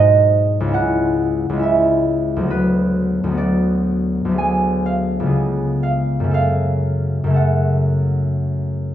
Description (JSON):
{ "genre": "classical, solo harp piece", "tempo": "58-71 BPM", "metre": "4/4", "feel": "rubato", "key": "F# minor", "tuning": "A4 = 439 Hz", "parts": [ { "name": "concert harp", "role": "solo", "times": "0.0-8.9 s", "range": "C#2 to G#5", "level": "-15 LUFS", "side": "equal", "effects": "none" } ], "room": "moderate recital hall reverb, RT60 1.4 s", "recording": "close, detailed microphones", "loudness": "-16 LUFS", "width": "side -11 dB against mid", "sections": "0.0-8.9 A section", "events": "none", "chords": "0.0 G#7; 0.8 C#m; 2.5 Bm/D; 4.4 G#m7b5/D; 5.3 C#7; 6.3 F#m", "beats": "0.76 1.64 | 2.51 3.38 4.37 5.33 | 6.33 7.36 8.40" }